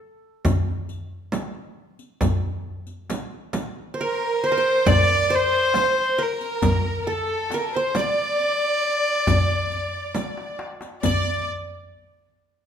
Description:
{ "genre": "Arabic maqam ensemble", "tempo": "136 BPM (eighths)", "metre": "10/8", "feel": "straight", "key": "unclear", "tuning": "A4 = 440 Hz", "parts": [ { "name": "qanun", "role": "second line", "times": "0.0-11.5 s", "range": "A4 to D5", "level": "-28 LUFS", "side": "right 3 dB", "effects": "none" }, { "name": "frame drum", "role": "percussion", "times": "0.4-11.4 s", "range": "none", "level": "-28 LUFS", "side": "right 3 dB", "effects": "none" }, { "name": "darbuka", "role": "percussion", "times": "0.5-11.5 s", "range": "none", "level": "-26 LUFS", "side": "left 2 dB", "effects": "none" }, { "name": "riq", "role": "percussion", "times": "0.5-11.4 s", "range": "none", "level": "-32 LUFS", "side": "left 3 dB", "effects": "none" }, { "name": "rich violin", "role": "melody", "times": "4.0-11.4 s", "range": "A4 to D5", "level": "-23 LUFS", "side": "equal", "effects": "none" }, { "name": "rich symphonic violin section", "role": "second line", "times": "4.0-11.4 s", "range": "A4 to D5", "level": "-27 LUFS", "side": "left 1 dB", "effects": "none" } ], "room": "wet recital hall reverb, RT60 1.4 s", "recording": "minimal, uncompressed stereo recording", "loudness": "-20 LUFS", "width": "side -8 dB against mid", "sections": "0.0-11.0 A section; 11.0-12.7 B section", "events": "drum fill 10.2-11.0", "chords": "none" }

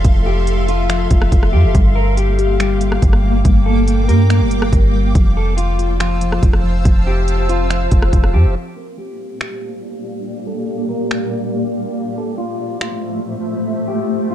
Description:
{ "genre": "hip hop, atmospheric cloud-rap", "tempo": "141 BPM", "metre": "4/4", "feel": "half-time", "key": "G dorian", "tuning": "A4 = 439 Hz", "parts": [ { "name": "granular cloud pad", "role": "sustained chords", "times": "0.0-14.3 s", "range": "A3 to E6", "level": "-21 LUFS", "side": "equal", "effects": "built-in reverb, sidechain pumping, low-pass filter" }, { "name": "muted felt-like synth keys", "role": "arpeggios", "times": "0.0-8.6 s", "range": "F3 to G4", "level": "-24 LUFS", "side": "left 5 dB", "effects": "chorus, tape echo" }, { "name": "warm 808-style bass", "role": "bass", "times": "0.0-8.6 s", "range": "F1 to G2", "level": "-15 LUFS", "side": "equal", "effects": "none" }, { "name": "trap drum kit", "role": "drums", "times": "0.0-12.9 s", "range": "finger snaps, hi-hat, kick drum, rim click", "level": "-15 LUFS", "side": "equal", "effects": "none" }, { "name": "electric guitar at the edge of break-up", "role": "melody", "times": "0.3-14.3 s", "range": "F4 to Bb4", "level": "-25 LUFS", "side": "left 2 dB", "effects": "low-pass filter, tape echo" } ], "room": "digital ambience", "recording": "dark, warm production", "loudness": "-13 LUFS", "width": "side -11 dB against mid", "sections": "0.0-8.6 A section; 8.6-14.3 B section", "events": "break 8.6-14.3; filter sweep 8.6-14.3", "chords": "0.0 Fmaj7; 1.7 Gm7; 5.2 Fmaj7; 8.6 Gm7; 12.0 Fmaj7" }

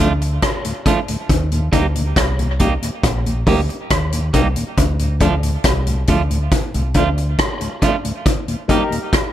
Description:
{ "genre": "dub reggae", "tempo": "69 BPM", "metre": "4/4", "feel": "straight", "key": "D phrygian", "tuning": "A4 = 436 Hz", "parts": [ { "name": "clean electric guitar", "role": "accompaniment", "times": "0.0-8.8 s", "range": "F3 to G4", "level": "-23 LUFS", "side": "right 5 dB", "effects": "dub echo" }, { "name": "mellow tonewheel organ", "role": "accompaniment", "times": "0.0-9.0 s", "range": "D2 to Eb4", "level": "-24 LUFS", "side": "left 3 dB", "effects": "chorus vibrato, slow rotary speaker" }, { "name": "deep dub fingered electric bass", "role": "bass", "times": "0.0-7.3 s", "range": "Bb1 to Eb2", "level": "-19 LUFS", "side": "equal", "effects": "none" }, { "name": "vintage drum kit", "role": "drums", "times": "0.2-9.3 s", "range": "hi-hat, kick drum, rim click", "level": "-18 LUFS", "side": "equal", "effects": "none" }, { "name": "clear baby grand piano", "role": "stabs", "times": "8.7-8.9 s", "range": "Eb4 to Bb4", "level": "-25 LUFS", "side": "left 4 dB", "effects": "dub echo" } ], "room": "light reverb, studio reverb", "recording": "none", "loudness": "-15 LUFS", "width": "side -12 dB against mid", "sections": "0.0-9.3 A section", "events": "break 0.0-8.3", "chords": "0.0 Dm; 1.3 Eb; 4.8 Dm; 8.3 Eb" }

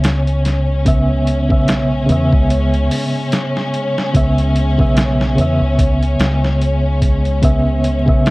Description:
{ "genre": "trip hop", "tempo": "73 BPM", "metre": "4/4", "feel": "swing 57% on 16ths", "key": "C# minor", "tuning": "A4 = 437 Hz", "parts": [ { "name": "reed electric piano", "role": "accompaniment", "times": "0.0-8.3 s", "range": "C#3 to E5", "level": "-17 LUFS", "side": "equal", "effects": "tremolo, vintage 12-bit sampler grit" }, { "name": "clear studio string section", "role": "sustained chords", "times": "0.0-8.3 s", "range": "C#4", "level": "-23 LUFS", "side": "left 1 dB", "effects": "none" }, { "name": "deep dub fingered electric bass", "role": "bass", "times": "0.0-8.3 s", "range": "B1 to E2", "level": "-17 LUFS", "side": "equal", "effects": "tube saturation" }, { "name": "boom bap sampler-style drum kit", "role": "drums", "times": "0.0-8.3 s", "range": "hi-hat, kick drum, snare drum", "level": "-17 LUFS", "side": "equal", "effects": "none" }, { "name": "bowed-like drone", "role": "texture", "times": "0.0-8.3 s", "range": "G#3", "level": "-30 LUFS", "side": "right 2 dB", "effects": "built-in reverb" } ], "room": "digital ambience", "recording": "worn, warbling old tape, cassette tape, vinyl crackle, warbly pitch drift", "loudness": "-13 LUFS", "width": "side -22 dB against mid", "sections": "0.0-8.3 A section", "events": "none", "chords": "0.0 C#m7" }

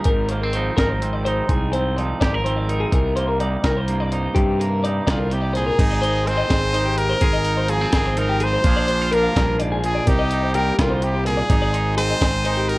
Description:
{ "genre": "math rock and midwest emo", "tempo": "84 BPM (dotted quarters)", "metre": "6/8", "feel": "straight", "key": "C minor", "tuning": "A4 = 440 Hz", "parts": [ { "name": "twangy electric guitar", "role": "accompaniment", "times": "0.0-12.8 s", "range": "G2 to Bb4", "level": "-26 LUFS", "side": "right 3 dB", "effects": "none" }, { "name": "twelve-string electric guitar", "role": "arpeggios", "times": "0.0-12.8 s", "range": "G4 to F5", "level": "-24 LUFS", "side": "left 2 dB", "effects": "none" }, { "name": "breakbeat sampler-style drum kit", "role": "drums", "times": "0.0-12.8 s", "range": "crash cymbal, hi-hat, kick drum, snare drum", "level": "-21 LUFS", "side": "equal", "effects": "none" }, { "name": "fuzz fingered electric bass", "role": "bass", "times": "0.1-12.8 s", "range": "Ab1 to G2", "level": "-23 LUFS", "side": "equal", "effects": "overdrive" }, { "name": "brilliant trumpet", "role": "melody", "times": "5.1-12.8 s", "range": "F4 to C5", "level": "-23 LUFS", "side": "equal", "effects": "none" } ], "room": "light reverb", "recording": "worn, warbling old tape, cassette tape, warbly pitch drift", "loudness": "-17 LUFS", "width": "side -20 dB against mid", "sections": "0.0-5.8 A section; 5.8-12.8 B section", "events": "none", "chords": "0.1 Fm9/Ab; 2.9 Cm7; 5.8 Abmaj7; 7.2 Fm7/Ab; 8.6 Bb7; 10.1 Cm7; 11.5 Abmaj7" }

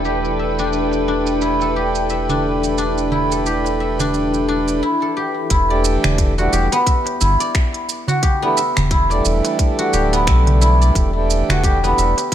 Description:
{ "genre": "organic downtempo", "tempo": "88 BPM", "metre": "4/4", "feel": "swing 58% on 16ths", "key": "E minor", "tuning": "A4 = 440 Hz", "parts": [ { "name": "pedal harmonium", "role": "accompaniment", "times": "0.0-12.1 s", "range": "E3 to B4", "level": "-22 LUFS", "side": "right 3 dB", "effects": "sidechain pumping, ping-pong delay" }, { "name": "granular cloud pad", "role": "sustained chords", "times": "0.0-4.8 s", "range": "E3 to G5", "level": "-26 LUFS", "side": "left 2 dB", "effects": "built-in reverb, sidechain pumping" }, { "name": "guzheng", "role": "arpeggios", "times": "0.0-12.3 s", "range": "B3 to E5", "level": "-19 LUFS", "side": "left 1 dB", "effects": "ping-pong delay" }, { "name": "round analog bass", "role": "bass", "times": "0.0-12.1 s", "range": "D1 to B1", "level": "-19 LUFS", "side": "equal", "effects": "none" }, { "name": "organic electronic drum kit", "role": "drums", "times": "0.0-12.3 s", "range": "finger snaps, hi-hat, shaker", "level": "-25 LUFS", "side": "right 4 dB", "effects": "studio reverb" }, { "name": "darbuka", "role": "percussion", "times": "0.9-12.3 s", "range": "none", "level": "-26 LUFS", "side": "right 3 dB", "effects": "none" }, { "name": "electronic kick drum", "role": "drums", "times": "5.5-12.3 s", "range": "none", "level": "-17 LUFS", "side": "equal", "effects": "studio reverb" } ], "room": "light reverb, studio ambience", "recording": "low-pass filter", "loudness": "-15 LUFS", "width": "side -10 dB against mid", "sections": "0.0-5.5 A section; 5.5-12.3 B section", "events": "none", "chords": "0.0 Gadd9/E; 5.5 Em7" }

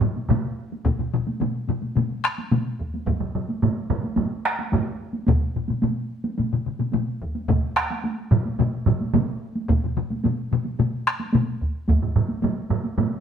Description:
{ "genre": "japanese traditional, taiko drum ensemble", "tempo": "109 BPM", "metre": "4/4", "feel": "straight", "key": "none", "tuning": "none", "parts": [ { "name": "taiko ensemble", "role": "percussion", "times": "0.0-13.1 s", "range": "none", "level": "-27 LUFS", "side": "right 2 dB", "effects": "none" }, { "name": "taiko ensemble", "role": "percussion", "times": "0.0-11.5 s", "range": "none", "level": "-24 LUFS", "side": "left 4 dB", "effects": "none" }, { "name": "taiko ensemble", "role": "percussion", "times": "0.0-13.1 s", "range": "none", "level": "-24 LUFS", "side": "right 3 dB", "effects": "none" }, { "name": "taiko ensemble", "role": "percussion", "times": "0.8-12.0 s", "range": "none", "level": "-24 LUFS", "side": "equal", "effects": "none" } ], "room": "wet stone room reverb, RT60 1.1 s", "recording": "band playing live in one room", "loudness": "-22 LUFS", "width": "side -8 dB against mid", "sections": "0.8-13.2 A section", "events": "none", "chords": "none" }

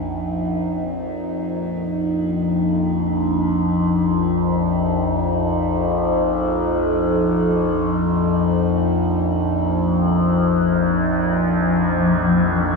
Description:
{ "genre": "dark ambient drone", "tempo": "free time", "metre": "none", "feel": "none", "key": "unclear", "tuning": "A4 = 438 Hz", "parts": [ { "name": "overtone-sweeping drone", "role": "drone", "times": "0.0-12.8 s", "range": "Bb1 to F2", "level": "-18 LUFS", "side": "left 1 dB", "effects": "chorus, built-in reverb" }, { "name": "metallic inharmonic drone", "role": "texture", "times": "0.0-12.8 s", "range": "Eb4", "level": "-28 LUFS", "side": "right 4 dB", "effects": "chorus, built-in reverb" }, { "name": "granular cloud pad", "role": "sustained chords", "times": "11.8-12.8 s", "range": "Bb2 to C4", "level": "-20 LUFS", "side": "left 3 dB", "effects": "built-in reverb" } ], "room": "wet huge ambient reverb, RT60 7.6 s", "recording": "in a vast, echoing space, cassette tape", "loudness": "-17 LUFS", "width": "side -3 dB against mid", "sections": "0.0-12.8 A section", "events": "fade-in on synth drone 0.0-12.8", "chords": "0.0 Bb5" }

